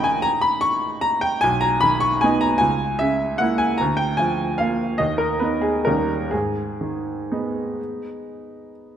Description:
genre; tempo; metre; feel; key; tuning
classical, piano waltz; 122-160 BPM; 3/4; rubato; G# minor; A4 = 440 Hz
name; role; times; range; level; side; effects
clear baby grand piano; solo; 0.0-9.0 s; A#1 to C#6; -19 LUFS; equal; none
room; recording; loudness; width
moderate concert hall reverb, RT60 1.8 s; none; -19 LUFS; side -9 dB against mid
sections
0.0-9.0 A section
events
none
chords
0.0 D#5/A#; 1.4 Bmaj13; 2.6 A#m7b5/C#; 3.8 A#7/D; 5.0 G#madd9/D#; 5.9 D#7; 6.3 G#m

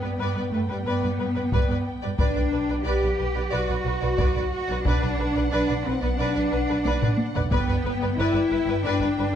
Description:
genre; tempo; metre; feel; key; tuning
cinematic, epic orchestral film score; 90 BPM; 4/4; straight; unclear; A4 = 440 Hz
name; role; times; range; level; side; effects
warm symphonic violin section; melody; 0.0-9.4 s; F#5 to G5; -38 LUFS; left 3 dB; none
warm symphonic violin section; second line; 0.0-9.3 s; B4 to D5; -34 LUFS; left 2 dB; none
warm symphonic viola section; accompaniment; 0.0-9.3 s; B4; -31 LUFS; left 1 dB; none
mellow French horn section; sustained chords; 0.0-9.4 s; G3 to G4; -29 LUFS; left 5 dB; none
rich symphonic cello section; bass; 0.0-9.4 s; G3 to G4; -29 LUFS; right 3 dB; none
rich symphonic double bass section; bass; 0.0-9.2 s; G1 to G2; -28 LUFS; right 2 dB; none
taiko ensemble; drums; 1.5-8.1 s; none; -26 LUFS; equal; none
room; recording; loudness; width
moderate scoring stage reverb, RT60 1.9 s; dark, warm production; -22 LUFS; side -9 dB against mid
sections
0.0-9.4 A section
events
drum fill 6.8-7.5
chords
0.0 G; 2.2 Bm; 7.5 G

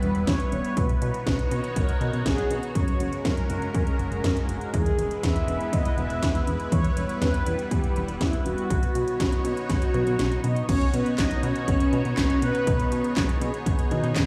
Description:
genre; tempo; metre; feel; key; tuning
italo disco; 121 BPM; 4/4; straight; B major; A4 = 439 Hz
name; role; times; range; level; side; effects
mellow synth brass; melody; 0.0-14.3 s; D#3 to E5; -31 LUFS; equal; chorus, tape echo, shimmer reverb
lush unison pad; sustained chords; 0.0-14.3 s; G3 to C#5; -34 LUFS; equal; chorus, phaser, shimmer reverb
chorused synth bass; bass; 0.0-14.3 s; E1 to B2; -31 LUFS; equal; none
house drum kit; drums; 0.0-14.3 s; crash cymbal, handclaps, hi-hat, snare drum; -34 LUFS; equal; overdrive
electronic kick drum; drums; 0.3-14.3 s; none; -29 LUFS; equal; overdrive
room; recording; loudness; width
moderate plate reverb, RT60 1.2 s, digital ambience; dreamy mix soaked in reverb, studio reverb; -25 LUFS; mono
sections
0.0-10.7 A section; 10.7-14.3 B section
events
kick drops out 10.2-10.7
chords
0.0 Em; 0.8 Badd9; 2.8 F#add9; 4.7 E; 6.7 Em; 8.7 Badd9

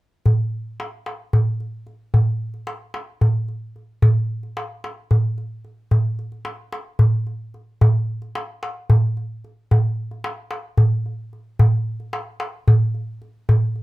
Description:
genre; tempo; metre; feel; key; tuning
turkish; free time; none; none; none; none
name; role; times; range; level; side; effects
darbuka; percussion; 0.3-13.8 s; none; -18 LUFS; equal; none
room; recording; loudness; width
little or no reverb; minimal, uncompressed stereo recording; -18 LUFS; side -19 dB against mid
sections
0.3-13.8 A section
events
none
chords
none

